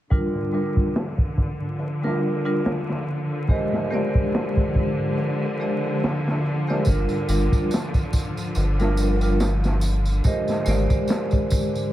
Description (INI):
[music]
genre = trip hop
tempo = 71 BPM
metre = 4/4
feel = swing 56% on 16ths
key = G phrygian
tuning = A4 = 441 Hz
[part]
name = vibraphone with medium mallets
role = accompaniment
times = 0.1-11.9 s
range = G3 to Eb5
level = -25 LUFS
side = equal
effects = harmonic tremolo, low-pass filter, tape echo
[part]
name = clear symphonic string section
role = sustained chords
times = 0.1-11.9 s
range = D3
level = -29 LUFS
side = left 1 dB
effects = low-pass filter
[part]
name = crunchy breakbeat drum kit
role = drums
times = 0.1-11.7 s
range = hi-hat, kick drum, snare drum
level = -24 LUFS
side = equal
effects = low-pass filter on kick, low-pass filter on hats, low-pass filter on snare, low-pass filter on room
[part]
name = bowed-like drone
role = texture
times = 1.2-11.9 s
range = F3 to F4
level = -35 LUFS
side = right 1 dB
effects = built-in reverb
[part]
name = tambourine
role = percussion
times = 6.8-11.9 s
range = none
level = -38 LUFS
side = right 3 dB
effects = none
[part]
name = soft dub sub bass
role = bass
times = 6.9-10.9 s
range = G1 to Ab1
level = -21 LUFS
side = equal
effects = none
[sound]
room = little or no reverb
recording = vinyl crackle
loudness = -20 LUFS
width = side -14 dB against mid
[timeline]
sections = 0.1-11.9 A section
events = filter sweep on string section 0.1-11.9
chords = 0.1 Gm7; 3.5 Abmaj9#11; 6.9 Gm7; 10.2 Abmaj9#11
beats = | 0.11 0.95 1.80 2.64 | 3.49 4.33 5.18 6.02 | 6.87 7.71 8.56 9.40 | 10.25 11.09